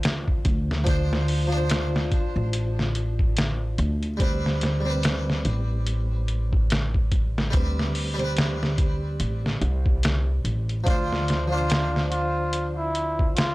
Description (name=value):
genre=trip hop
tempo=72 BPM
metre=4/4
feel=swing 58% on 16ths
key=D dorian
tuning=A4 = 440 Hz
part: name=harpsichord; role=accompaniment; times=0.0-13.5 s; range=F3 to C5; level=-31 LUFS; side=equal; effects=harmonic tremolo, tape echo
part: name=upright bass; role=bass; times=0.0-13.5 s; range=A1 to D2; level=-25 LUFS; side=equal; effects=none
part: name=trip hop sampler-style drum kit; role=drums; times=0.0-13.5 s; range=hi-hat, kick drum, snare drum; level=-24 LUFS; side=equal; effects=none
part: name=trumpet with cup mute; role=melody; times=10.9-13.5 s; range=E4 to F4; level=-27 LUFS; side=equal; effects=none
room=studio reverb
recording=dry, gritty hardware recording, cassette tape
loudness=-22 LUFS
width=side -20 dB against mid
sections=0.0-13.5 A section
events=none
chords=0.0 Dm7; 4.2 Am9; 10.9 Dm7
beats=0.03 | 0.86 1.70 2.53 3.36 | 4.20 5.03 5.86 6.70 | 7.53 8.36 9.20 10.03 | 10.86 11.70 12.53 13.36